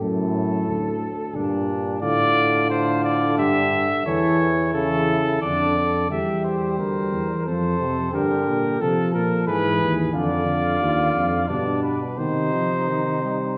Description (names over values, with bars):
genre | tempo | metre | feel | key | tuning
classical, imitative canzona for brass ensemble | 89 BPM | 3/4 | straight | C minor from 10.1 s | A4 = 440 Hz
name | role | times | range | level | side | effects
mellow flugelhorn | second line | 0.0-13.6 s | D4 to Bb4 | -29 LUFS | equal | none
warm euphonium | accompaniment | 0.0-13.6 s | A2 to G3 | -27 LUFS | equal | none
dark bass trombone | bass | 0.0-13.6 s | D2 to C3 | -28 LUFS | equal | none
mellow trumpet | melody | 2.0-13.6 s | A4 to E5 | -26 LUFS | equal | none
room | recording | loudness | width
wet recital hall reverb, RT60 1.5 s | recorded in a church or concert hall | -22 LUFS | mono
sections
0.0-6.1 A section; 6.1-13.6 B section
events
none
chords
0.0 D/F#; 1.4 Gm; 2.0 Dm/A; 3.4 Em7/G; 4.1 A/E; 5.4 Dm/F; 6.1 C/E; 7.5 F; 8.1 Gm; 9.5 E/G#; 10.1 Dm; 11.5 G; 12.2 Cm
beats
| 0.01 0.69 1.35 | 2.02 2.70 3.38 | 4.06 4.74 5.42 | 6.11 6.79 7.46 | 8.13 8.81 9.47 | 10.14 10.81 11.49 | 12.18 12.88 13.57